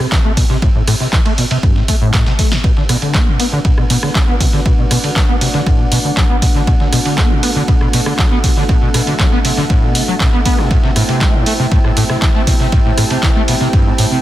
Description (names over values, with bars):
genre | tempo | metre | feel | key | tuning
acid house | 119 BPM | 4/4 | straight | B phrygian | A4 = 436 Hz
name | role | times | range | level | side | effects
overdriven acid bass | riff | 0.0-14.2 s | G2 to B3 | -17 LUFS | equal | ensemble chorus, sidechain pumping, tape echo
dusty soul sampler-style drum kit | drums | 0.0-14.1 s | hi-hat, ride cymbal, snare drum | -26 LUFS | right 2 dB | overdrive, sidechain pumping on cymbals, high-pass filter on cymbals, high-pass filter on snare, sidechain pumping on hats, high-pass filter on hats, high-pass filter on room
punchy analog drum machine | drums | 0.0-14.1 s | handclaps, hi-hat, rim click, snare drum | -20 LUFS | right 1 dB | none
granular cloud pad | texture | 0.0-14.2 s | B3 to A5 | -24 LUFS | right 1 dB | built-in reverb, sidechain pumping
electronic kick drum | drums | 0.1-13.8 s | none | -13 LUFS | equal | none
dark analog pad | sustained chords | 2.6-14.2 s | A3 to G5 | -22 LUFS | right 1 dB | chorus, sidechain pumping
room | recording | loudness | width
digital ambience | dense, heavily limited modern master | -11 LUFS | side -14 dB against mid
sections
0.0-14.2 A section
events
fade-in on ambient pad 0.0-14.2; filter sweep on acid bass 0.0-14.2; drum fill 2.1-2.6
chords
0.0 Am7; 2.6 Bm7; 10.7 Am7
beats
0.12 | 0.62 1.13 1.63 2.14 | 2.64 3.14 3.65 4.15 | 4.66 5.16 5.67 6.17 | 6.67 7.18 7.68 8.19 | 8.69 9.20 9.70 10.20 | 10.71 11.21 11.72 12.22 | 12.72 13.23 13.73